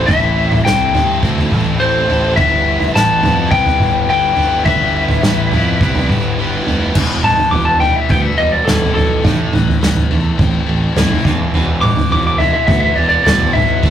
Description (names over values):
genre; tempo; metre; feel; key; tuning
indie rock; 105 BPM; 4/4; straight; unclear; A4 = 439 Hz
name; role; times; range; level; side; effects
lightly driven lead guitar; melody; 0.0-13.8 s; A4 to D6; -15 LUFS; left 2 dB; none
biting overdriven guitar; riff; 0.0-13.9 s; E2 to B4; -22 LUFS; left 4 dB; spring reverb
crunchy overdriven guitar; riff; 0.0-13.9 s; E2 to A4; -24 LUFS; right 5 dB; none
fuzz fingered electric bass; bass; 0.0-13.9 s; E1 to G2; -20 LUFS; equal; overdrive
unplugged drum kit; drums; 0.1-13.9 s; crash cymbal, kick drum, snare drum, toms; -16 LUFS; right 1 dB; none
room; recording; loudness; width
moderate studio reverb, RT60 0.5 s; rough rehearsal-room recording, warm saturation; -11 LUFS; side -10 dB against mid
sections
0.0-7.0 A section; 7.0-13.9 B section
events
lead electric guitar solo 7.0-13.9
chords
0.0 Am; 2.4 Em/G; 7.0 Em; 9.2 Am; 11.3 E